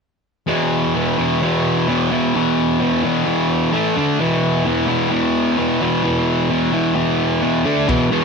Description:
garage rock duo or trio; 130 BPM; 4/4; straight; A4 = 435 Hz
fuzz guitar; riff; 0.5-8.2 s; E2 to D4; -15 LUFS; equal; distortion
crunchy breakbeat drum kit; drums; 7.9-8.0 s; crash cymbal, kick drum; -23 LUFS; left 1 dB
light reverb, small room ambience; 1960s-style stereo; -15 LUFS; side -5 dB against mid
0.5-7.9 A section
0.5 E5; 3.7 A5; 4.0 D5; 4.2 E5; 7.7 D5
| 0.48 0.95 1.41 1.88 | 2.34 2.80 3.27 3.73 | 4.19 4.66 5.12 5.58 | 6.04 6.50 6.96 7.42 | 7.89

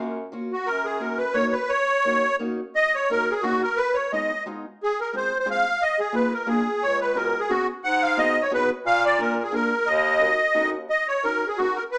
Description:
musette waltz; 176 BPM; 3/4; swing 54% on 8ths; Eb minor; A4 = 440 Hz
picked old ladder-braced acoustic guitar; accompaniment; 0.0-11.8 s; Ab3 to Bb4; -28 LUFS; equal; plate reverb
clear bass clarinet; bass; 0.0-1.3, 6.8-10.9 s; Db2 to Bb2; -28 LUFS; equal
musette accordion; melody; 0.5-12.0 s; F#4 to Gb5; -21 LUFS; equal; plate reverb
wet studio reverb, RT60 0.6 s; rough home demo mix, small speaker sound; -20 LUFS; side -31 dB against mid
0.0-2.8 A section; 2.8-10.9 B section; 10.9-12.0 B section
0.0 F#maj7; 0.7 F#6; 2.8 Ebm7; 3.8 Fm7b5; 4.8 Fm; 5.8 Bb7sus4; 6.5 Bb7; 6.8 Db7sus4; 7.9 Abm7; 8.9 Bb; 9.9 Ebm7
0.33 | 0.68 1.02 1.36 | 1.71 2.06 2.41 | 2.76 3.11 3.45 | 3.79 4.12 4.46 | 4.80 5.13 5.47 | 5.80 6.14 6.48 | 6.82 7.17 7.51 | 7.85 8.19 8.53 | 8.86 9.20 9.54 | 9.87 10.21 10.56 | 10.90 11.25 11.59 | 11.93

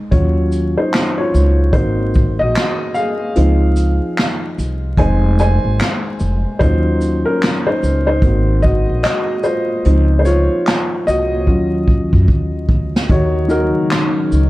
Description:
lo-fi hip hop; 74 BPM; 4/4; swing 62% on 16ths; Eb dorian; A4 = 440 Hz
dark upright piano; accompaniment; 0.0-14.5 s; Eb3 to Ab5; -17 LUFS; left 1 dB; cassette tape
upright bass; bass; 0.1-14.5 s; F1 to Gb2; -16 LUFS; equal
vintage brush drum kit; drums; 0.1-14.5 s; handclaps, hi-hat, kick drum, shaker, snare drum; -17 LUFS; equal; vintage 12-bit sampler grit
deep dark ambient pad; sustained chords; 13.6-14.5 s; Db3 to Eb4; -20 LUFS; equal; chorus, built-in reverb
light reverb, small room ambience; dark, warm production, vinyl crackle; -13 LUFS; side -18 dB against mid
0.0-13.1 A section; 13.1-14.5 A section
upright piano solo 0.0-13.1; drum fill 11.5-13.1
0.1 Ebm7; 1.7 Ab7; 3.4 Dbmaj7; 5.0 Fm7; 6.6 Ebm7; 8.2 Ab7; 9.8 Dbmaj7; 11.5 Ebm7
| 0.12 0.93 1.74 2.55 | 3.36 4.17 4.99 5.80 | 6.61 7.42 8.23 9.04 | 9.85 10.66 11.47 12.28 | 13.09 13.90

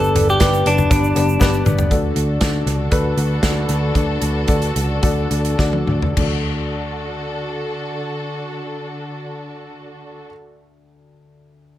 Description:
piano-driven pop; 102-120 BPM; 4/4; straight; D major; A4 = 439 Hz
direct-recorded clean electric guitar; melody; 0.0-1.6 s; D4 to A4; -18 LUFS; equal
warm upright piano; accompaniment; 0.0-11.8 s; D2 to D5; -23 LUFS; left 3 dB; analog delay
vintage muted picked electric bass; bass; 0.0-10.3 s; F#1 to D2; -20 LUFS; equal
egg shaker; percussion; 0.0-1.9 s; -36 LUFS; right 8 dB
natural country drum kit; drums; 0.2-6.3 s; crash cymbal, hi-hat, kick drum, snare drum, toms; -20 LUFS; equal
warm studio string section; sustained chords; 1.9-10.3 s; D3 to A4; -27 LUFS; equal
moderate spring reverb, RT60 1.2 s; echo-heavy mix; -16 LUFS; side -13 dB against mid
0.0-1.9 A section; 1.9-6.2 B section; 6.2-10.9 C section
drum fill 1.4-1.9, 5.6-6.2; slowing down 1.9-6.2
0.0 G; 1.9 D
0.41 0.91 1.41 | 1.91 2.41 2.92 3.43 | 3.95 4.48 5.03 5.59 | 6.17 6.76 7.35 7.94 | 8.53 9.12 9.71 10.29

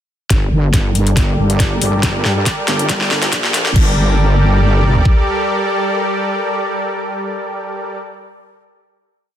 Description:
heavy wobble dubstep; 139 BPM; 4/4; swing 53% on 16ths, half-time; G minor; A4 = 440 Hz
supersaw chords; sustained chords; 0.3-8.0 s; G3 to D5; -19 LUFS; equal; sidechain pumping, low-pass filter
wobble bass; bass; 0.3-5.0 s; G1 to G2; -15 LUFS; equal; chorus, overdrive
dubstep drum kit; drums; 0.3-5.2 s; kick drum, toms; -15 LUFS; equal; overdrive
dubstep drum kit; drums; 0.3-3.9 s; crash cymbal, hi-hat, snare drum; -19 LUFS; left 1 dB; high-pass filter on snare, high-pass filter on hats, high-pass filter on cymbals
light reverb, digital ambience; dense, heavily limited modern master, high-pass filter; -13 LUFS; side -10 dB against mid
0.3-3.8 build; 3.8-7.2 final chord
build-up 0.3-3.8; drum fill 0.3-3.8; filter sweep on supersaw synth 0.3-3.8; filter sweep 0.3-3.8
0.3 Gmadd9
| 0.30 0.74 1.17 1.60 | 2.03 2.46 2.90 3.33 | 3.76 4.19 4.62 5.05 | 5.49 5.92 6.35 6.78

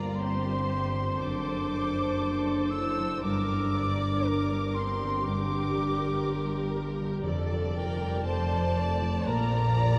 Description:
classical; 60 BPM; 4/4; rubato; A4 = 440 Hz
rich studio violin section; melody; 0.0-10.0 s; F4 to D5; -44 LUFS; equal
clear studio violin section; second line; 0.0-10.0 s; G5 to E6; -45 LUFS; equal
mellow silver concert flute; second line; 0.0-10.0 s; G5 to E6; -36 LUFS; equal
rich studio viola section; accompaniment; 0.0-10.0 s; G4 to D5; -38 LUFS; equal
dark French horn section; sustained chords; 0.0-10.0 s; G3 to E4; -36 LUFS; equal
concert harp; arpeggios; 0.0-10.0 s; F2 to D5; -37 LUFS; equal
bright studio double bass section; bass; 0.0-10.0 s; F1 to Bb1; -36 LUFS; equal
rich studio cello section; bass; 0.0-10.0 s; F2 to Bb2; -36 LUFS; equal
wet cathedral reverb, RT60 4.7 s; dark, warm production; -29 LUFS; mono
0.0-10.0 A section
0.0 G5; 1.2 D/F#; 3.2 Gm; 7.3 Dm/F; 9.3 Gm/Bb (rootless)
0.20 1.21 2.21 | 3.24 4.27 5.27 6.26 | 7.26 8.27 9.28

